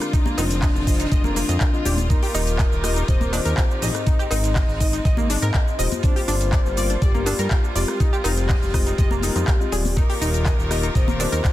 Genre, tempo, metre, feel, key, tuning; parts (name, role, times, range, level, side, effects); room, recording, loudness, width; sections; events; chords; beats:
progressive house; 122 BPM; 4/4; straight; Eb major; A4 = 440 Hz
soft octave-layered synth lead; melody; 0.0-11.5 s; D4 to Eb5; -28 LUFS; left 2 dB; chorus, tremolo, dub echo
clear studio string section; sustained chords; 0.0-11.5 s; Eb3 to Bb4; -32 LUFS; right 2 dB; sidechain pumping
deep mellow chord stab; stabs; 0.0-11.5 s; G2 to Eb5; -30 LUFS; left 4 dB; chorus, sidechain pumping, tape echo
pop drum kit; drums; 0.0-11.5 s; cabasa, handclaps, hi-hat, rim click; -29 LUFS; equal; studio reverb
warm soul drum kit; drums; 0.0-11.5 s; hi-hat, snare drum; -40 LUFS; right 4 dB
tight sequenced synth; arpeggios; 0.1-11.4 s; Bb3 to Eb5; -30 LUFS; equal; chorus, sidechain pumping, tape echo
electronic kick drum; drums; 0.1-11.5 s; -19 LUFS; equal; studio reverb
congas and cowbell; percussion; 0.3-11.3 s; -31 LUFS; left 3 dB; sidechain pumping on perc
fat analog bass; bass; 0.4-11.4 s; Eb1 to Ab2; -24 LUFS; equal; sidechain pumping
small room ambience; dense, heavily limited modern master; -18 LUFS; side -15 dB against mid
0.0-11.5 A section
0.1 Ebadd9; 6.0 Gm7; 8.0 Ebadd9
| 0.13 0.62 1.12 1.61 | 2.10 2.59 3.08 3.58 | 4.07 4.56 5.05 5.54 | 6.04 6.53 7.02 7.51 | 8.00 8.49 8.98 9.48 | 9.97 10.46 10.95 11.44